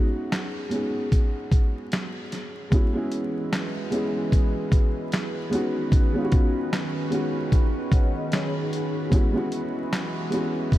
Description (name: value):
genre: lo-fi hip hop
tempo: 75 BPM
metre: 4/4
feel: swing 57% on 16ths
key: unclear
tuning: A4 = 440 Hz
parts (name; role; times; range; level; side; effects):
- dark upright piano; accompaniment; 0.0-10.8 s; G#3 to C#5; -28 LUFS; equal; cassette tape, low-pass filter
- dusty soul sampler-style drum kit; drums; 0.3-10.8 s; handclaps, hi-hat, kick drum, snare drum; -23 LUFS; equal; none
- warbly tape-like pad; sustained chords; 3.1-10.8 s; D#3 to B4; -31 LUFS; right 1 dB; chorus, built-in reverb, low-pass filter
- vibraphone with soft mallets; second line; 7.9-9.1 s; D#4 to F#5; -34 LUFS; left 4 dB; low-pass filter, analog delay
room: light reverb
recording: vinyl crackle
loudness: -22 LUFS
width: side -15 dB against mid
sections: 0.0-2.7 A section; 2.7-10.8 A section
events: none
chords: 0.0 C#9sus4; 2.7 F#9sus4; 5.5 C#9sus4; 9.1 F#9sus4